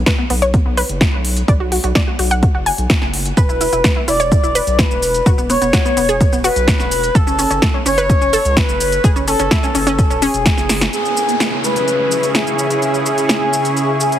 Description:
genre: progressive house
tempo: 127 BPM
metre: 4/4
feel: straight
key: unclear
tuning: A4 = 438 Hz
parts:
  - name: analog pluck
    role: arpeggios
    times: 0.0-10.8 s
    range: B3 to G#5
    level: -20 LUFS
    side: equal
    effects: chorus, sidechain pumping, dub echo
  - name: round analog bass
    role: bass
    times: 0.0-10.9 s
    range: E1 to C#2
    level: -22 LUFS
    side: equal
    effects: sidechain pumping
  - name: big-room dance drum kit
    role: drums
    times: 0.1-14.2 s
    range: hi-hat, shaker, snare drum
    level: -20 LUFS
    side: equal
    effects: sidechain pumping on hats, sidechain pumping on perc
  - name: electronic kick drum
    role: drums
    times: 0.1-10.6 s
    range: none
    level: -15 LUFS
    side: equal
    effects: overdrive
  - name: expressive portamento lead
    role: melody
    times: 3.4-14.2 s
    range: G#4 to D5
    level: -17 LUFS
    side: left 1 dB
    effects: wide subtle chorus, sidechain pumping, ping-pong delay
  - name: supersaw pad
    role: sustained chords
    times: 10.9-14.2 s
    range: C#3 to G#4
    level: -20 LUFS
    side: right 1 dB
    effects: sidechain pumping
  - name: downlifter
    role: sound effects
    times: 10.9-14.2 s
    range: none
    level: -24 LUFS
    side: right 2 dB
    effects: none
  - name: backwards swelling texture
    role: texture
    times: 11.6-14.2 s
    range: E5 to C#6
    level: -27 LUFS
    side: right 1 dB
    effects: built-in reverb, sidechain pumping
room: digital ambience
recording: heavily compressed radio sound, multiband compression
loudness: -13 LUFS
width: side -11 dB against mid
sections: 0.0-10.9 A section; 10.9-14.2 B section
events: drum fill 10.7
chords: 0.0 B5; 3.4 Esus2; 7.2 F#madd9; 10.9 C#m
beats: 0.07 0.54 1.01 | 1.48 1.96 2.43 2.90 | 3.37 3.84 4.32 4.79 | 5.26 5.73 6.21 6.68 | 7.15 7.62 8.10 8.57 | 9.04 9.51 9.99 10.46 | 10.93 11.40 11.88 12.35 | 12.82 13.29 13.77

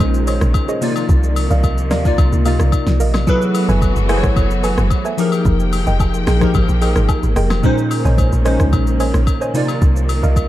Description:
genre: amapiano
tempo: 110 BPM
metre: 4/4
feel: straight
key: Bb dorian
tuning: A4 = 440 Hz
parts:
  - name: glassy digital keys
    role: accompaniment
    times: 0.0-10.5 s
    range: Bb2 to D5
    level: -19 LUFS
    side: left 1 dB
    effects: chorus
  - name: warm studio string section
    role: sustained chords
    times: 0.0-10.5 s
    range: C3 to G5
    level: -25 LUFS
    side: equal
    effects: sidechain pumping
  - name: deep log drum bass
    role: bass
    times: 0.0-10.5 s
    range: F1 to Eb2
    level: -16 LUFS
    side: equal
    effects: none
  - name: smooth R&B drum kit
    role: drums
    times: 0.0-10.5 s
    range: hi-hat, kick drum, rim click, shaker, snare drum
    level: -19 LUFS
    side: equal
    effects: overdrive
  - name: agogo bells and woodblock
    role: percussion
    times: 0.0-10.5 s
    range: none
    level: -28 LUFS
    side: left 9 dB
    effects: none
  - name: soft round pluck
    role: stabs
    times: 0.3-10.5 s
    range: Ab4 to Ab5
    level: -25 LUFS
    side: right 3 dB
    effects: chorus, ping-pong delay
room: little or no reverb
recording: dark, warm production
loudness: -13 LUFS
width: side -14 dB against mid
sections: 0.0-10.5 A section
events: none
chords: 0.0 Bbm11; 0.8 Cm11; 3.3 Gbm11; 5.2 Fm11; 7.6 Bbm11; 9.5 Cm11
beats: 0.00 0.55 | 1.09 1.64 2.18 2.73 | 3.27 3.82 4.36 4.91 | 5.46 6.00 6.55 7.09 | 7.64 8.18 8.73 9.27 | 9.82 10.36

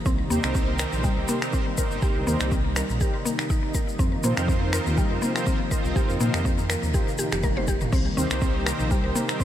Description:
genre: afro house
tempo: 122 BPM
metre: 4/4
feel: swing 55% on 16ths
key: C minor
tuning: A4 = 440 Hz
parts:
  - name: warm analog pad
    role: sustained chords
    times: 0.0-9.4 s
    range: C3 to Eb4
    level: -31 LUFS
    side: equal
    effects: chorus, sidechain pumping
  - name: mallet-like synth pluck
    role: arpeggios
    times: 0.1-9.4 s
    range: G3 to C5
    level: -29 LUFS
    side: left 2 dB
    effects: chorus, sidechain pumping, ping-pong delay
  - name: dark detuned saw bass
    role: bass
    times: 0.1-9.1 s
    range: F1 to Bb2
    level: -28 LUFS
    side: equal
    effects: sidechain pumping
  - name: electronic kick drum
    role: drums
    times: 0.1-9.4 s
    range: none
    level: -25 LUFS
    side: equal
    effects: none
  - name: tube shaker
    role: percussion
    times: 0.1-9.4 s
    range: none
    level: -37 LUFS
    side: left 5 dB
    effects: none
  - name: mellow synth brass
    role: stabs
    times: 0.3-9.4 s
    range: C4 to C5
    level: -31 LUFS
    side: right 2 dB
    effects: chorus, sidechain pumping, ping-pong delay
  - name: deep house drum kit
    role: drums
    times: 0.4-9.4 s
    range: crash cymbal, finger snaps, toms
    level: -33 LUFS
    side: equal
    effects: none
room: light reverb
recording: none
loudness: -22 LUFS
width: side -11 dB against mid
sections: 0.0-9.4 A section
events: drum fill 7.4-7.9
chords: 0.1 Cm7; 4.0 F7sus4; 7.9 Cm7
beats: | 0.06 0.55 1.04 1.53 | 2.02 2.52 3.01 3.50 | 3.99 4.48 4.97 5.47 | 5.96 6.45 6.94 7.43 | 7.93 8.42 8.91 9.40

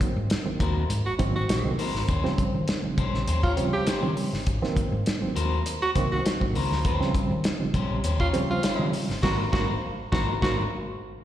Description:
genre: funk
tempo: 101 BPM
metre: 4/4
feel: straight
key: unclear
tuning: A4 = 440 Hz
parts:
  - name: reed electric piano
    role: stabs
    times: 0.0-10.6 s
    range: Db3 to C4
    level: -29 LUFS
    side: right 3 dB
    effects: overdrive, fast tremolo, slapback echo
  - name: hollow-body short-scale fingered electric bass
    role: bass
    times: 0.0-10.6 s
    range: G1 to Eb3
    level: -28 LUFS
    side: equal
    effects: none
  - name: warm soul drum kit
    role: drums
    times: 0.0-10.6 s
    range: crash cymbal, hi-hat, kick drum, snare drum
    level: -28 LUFS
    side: equal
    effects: none
  - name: electric guitar at the edge of break-up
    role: accompaniment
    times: 0.6-10.6 s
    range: Db4 to Db5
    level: -32 LUFS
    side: left 5 dB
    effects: spring reverb, slapback echo
  - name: breathy tenor saxophone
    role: second line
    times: 1.1-10.6 s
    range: F4 to G4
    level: -30 LUFS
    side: right 2 dB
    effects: slapback echo
room: light reverb, studio reverb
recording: live gig heard through the venue's PA, recital hall reverb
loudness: -23 LUFS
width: side -12 dB against mid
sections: 0.0-11.2 A section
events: band accent 9.2-11.2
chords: 0.0 Ab9; 2.1 Eb13; 4.5 Ab9; 6.9 Eb13; 9.2 Ab9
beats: 0.31 0.90 1.50 | 2.09 2.69 3.28 3.88 | 4.47 5.07 5.66 6.26 | 6.85 7.45 8.04 8.64 | 9.23 9.83 10.42

